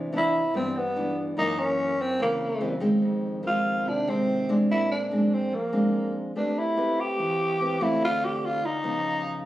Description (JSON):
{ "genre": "bossa nova", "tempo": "145 BPM", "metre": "4/4", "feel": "straight", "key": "unclear", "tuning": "A4 = 440 Hz", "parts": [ { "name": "nylon-string guitar", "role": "accompaniment", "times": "0.0-9.5 s", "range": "F2 to B4", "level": "-27 LUFS", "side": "equal", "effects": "none" }, { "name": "growling tenor saxophone", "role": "melody", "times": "0.2-9.5 s", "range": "A#3 to G4", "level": "-25 LUFS", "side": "equal", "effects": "none" } ], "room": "light reverb", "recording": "recorded on a phone in the room, studio ambience", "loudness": "-23 LUFS", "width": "side -14 dB against mid", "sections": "0.0-9.5 A section", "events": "none", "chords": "0.0 Cmaj9; 1.4 F#7#11; 3.0 Fm7; 4.7 Bb9; 6.3 Am9; 8.0 Dm7; 8.8 Db9" }